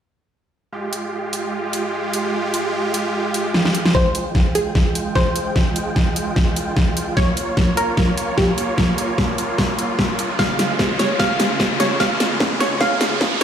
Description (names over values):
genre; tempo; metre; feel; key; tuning
heavy wobble dubstep; 149 BPM; 4/4; swing 55% on 16ths, half-time; F minor; A4 = 440 Hz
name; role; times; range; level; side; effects
supersaw chords; sustained chords; 0.7-13.4 s; Db3 to G5; -24 LUFS; right 2 dB; sidechain pumping, low-pass filter
dubstep drum kit; drums; 0.9-13.4 s; hi-hat, snare drum; -20 LUFS; equal; overdrive
wide unison pluck; melody; 3.9-13.4 s; G4 to F5; -22 LUFS; right 1 dB; digital delay
electronic kick drum; drums; 3.9-13.3 s; none; -20 LUFS; equal; overdrive
riser; sound effects; 5.1-13.4 s; none; -26 LUFS; equal; none
room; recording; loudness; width
moderate lush hall reverb, RT60 1.8 s, digital ambience; played on a big sound system in a bare room, stone room reverb, high-pass filter; -17 LUFS; side -9 dB against mid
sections
0.7-3.9 A section; 3.9-13.4 B section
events
drum fill 3.5-3.9, 3.9-13.4; build-up 3.9-13.4; filter sweep on supersaw synth 3.9-13.4; filter sweep 3.9-13.4; riser 5.1-13.4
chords
0.7 Fmadd9; 7.2 Bbm; 10.4 Db